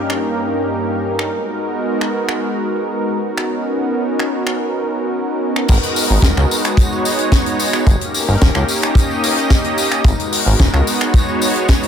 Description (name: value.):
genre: nu-disco, nu disco.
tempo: 110 BPM.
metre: 4/4.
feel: straight.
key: G# minor.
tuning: A4 = 440 Hz.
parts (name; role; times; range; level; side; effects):
warm analog pad; accompaniment; 0.0-11.9 s; G2 to D#5; -18 LUFS; equal; chorus, sidechain pumping, ping-pong delay.
tight funk drum kit; drums; 0.1-11.9 s; crash cymbal, finger snaps, hi-hat, snare drum, tambourine; -20 LUFS; left 2 dB; none.
chorused synth bass; bass; 5.7-10.8 s; D#1 to C#2; -15 LUFS; equal; none.
kick drum; drums; 5.7-11.8 s; none; -14 LUFS; equal; none.
room: light reverb, small room ambience.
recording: none.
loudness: -14 LUFS.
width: side -8 dB against mid.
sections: 0.0-5.7 A section; 5.7-11.9 B section.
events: drop 5.7-11.9.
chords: 0.0 D#7/G; 1.3 G#m7; 3.2 Bmaj7; 5.7 G#m7; 7.9 D#7; 10.1 G#m7.